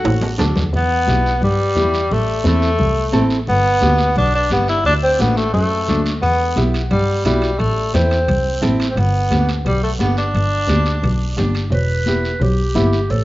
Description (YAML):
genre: latin, cumbia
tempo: 175 BPM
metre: 4/4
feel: straight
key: unclear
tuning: A4 = 440 Hz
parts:
  - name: warm clarinet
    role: melody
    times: 0.0-0.4, 11.7-13.2 s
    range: G4 to B4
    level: -24 LUFS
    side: right 1 dB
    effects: none
  - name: warm tenor saxophone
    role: second line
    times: 0.0-11.3 s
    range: G3 to F#4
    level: -18 LUFS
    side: left 1 dB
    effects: none
  - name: warm double bass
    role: bass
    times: 0.0-13.2 s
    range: E1 to G2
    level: -18 LUFS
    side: equal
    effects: none
  - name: congas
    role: percussion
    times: 0.0-13.2 s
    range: none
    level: -25 LUFS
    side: left 2 dB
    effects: none
  - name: cowbell and timbales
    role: percussion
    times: 0.1-0.6, 6.2-13.2 s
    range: none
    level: -27 LUFS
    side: right 3 dB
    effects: none
  - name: guiro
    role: percussion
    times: 0.1-13.2 s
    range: none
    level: -32 LUFS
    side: right 2 dB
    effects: none
  - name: nylon-string guitar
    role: accompaniment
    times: 0.4-13.0 s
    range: A3 to A4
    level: -22 LUFS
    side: right 1 dB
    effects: none
room: light reverb, studio ambience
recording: rough home demo mix, nothing above 7.6 kHz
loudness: -14 LUFS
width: side -17 dB against mid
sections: 0.7-11.7 A section; 11.7-13.2 B section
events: drum fill 0.0-0.7; tenor saxophone solo 0.7-11.7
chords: 0.0 D; 0.7 Em; 2.1 Am; 3.5 G; 4.9 D; 6.2 Emadd9; 7.6 Am; 9.0 G; 11.7 Em